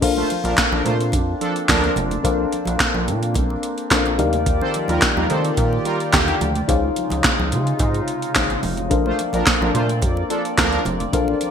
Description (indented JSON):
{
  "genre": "early-eighties boogie funk",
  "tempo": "108 BPM",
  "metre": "4/4",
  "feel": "straight",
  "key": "Bb major",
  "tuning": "A4 = 438 Hz",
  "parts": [
    { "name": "mellow FM electric piano", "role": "accompaniment", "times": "0.0-11.5 s", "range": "D4 to F5", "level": "-24 LUFS", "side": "left 6 dB", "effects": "chorus" },
    { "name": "chorused pulse-width pad", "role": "sustained chords", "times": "0.0-11.5 s", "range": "C3 to D5", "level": "-27 LUFS", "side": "right 1 dB", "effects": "none" },
    { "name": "rubbery square bass", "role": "bass", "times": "0.0-11.3 s", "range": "F1 to Eb3", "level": "-23 LUFS", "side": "equal", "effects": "none" },
    { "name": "electro analog drum machine", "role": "drums", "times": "0.0-11.5 s", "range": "crash cymbal, handclaps, hi-hat, kick drum, snare drum", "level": "-20 LUFS", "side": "right 1 dB", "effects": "gated reverb" },
    { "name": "congas", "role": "percussion", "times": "0.0-11.5 s", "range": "none", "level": "-30 LUFS", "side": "right 4 dB", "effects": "none" },
    { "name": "analog synth brass", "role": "second line", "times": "0.2-10.8 s", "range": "D3 to C5", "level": "-24 LUFS", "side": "right 1 dB", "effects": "chorus" }
  ],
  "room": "moderate plate reverb, RT60 1.3 s, digital ambience",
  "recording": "bright 1980s-style digital production",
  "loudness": "-17 LUFS",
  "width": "side -7 dB against mid",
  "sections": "0.0-11.5 A section",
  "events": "none",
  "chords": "0.0 Bbmaj9; 4.2 Ebmaj9; 6.7 Dbmaj9; 8.9 Bbmaj9"
}